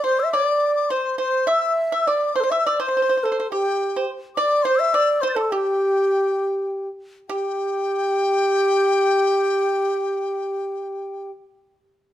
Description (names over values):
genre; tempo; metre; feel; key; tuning
chinese traditional, Chinese chamber ensemble; 73-106 BPM; 2/4; straight; G zhi mode; A4 = 440 Hz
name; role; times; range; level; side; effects
bright low xiao; melody; 0.0-11.3 s; G4 to E5; -20 LUFS; right 1 dB; none
mellow hollow dizi; second line; 0.0-11.3 s; G5 to A6; -25 LUFS; left 7 dB; none
pipa; second line; 0.0-11.5 s; G4 to E5; -25 LUFS; right 4 dB; none
room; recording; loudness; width
moderate recital hall reverb, RT60 1.4 s; close, detailed microphones; -19 LUFS; side -12 dB against mid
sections
0.0-7.3 A section; 7.3-10.5 B section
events
slowing down 4.6-7.3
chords
none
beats
| 0.04 0.62 | 1.20 1.78 | 2.36 2.94 | 3.51 4.08 | 4.64 5.22 | 5.83 6.52 | 7.29 8.11 | 8.91 9.72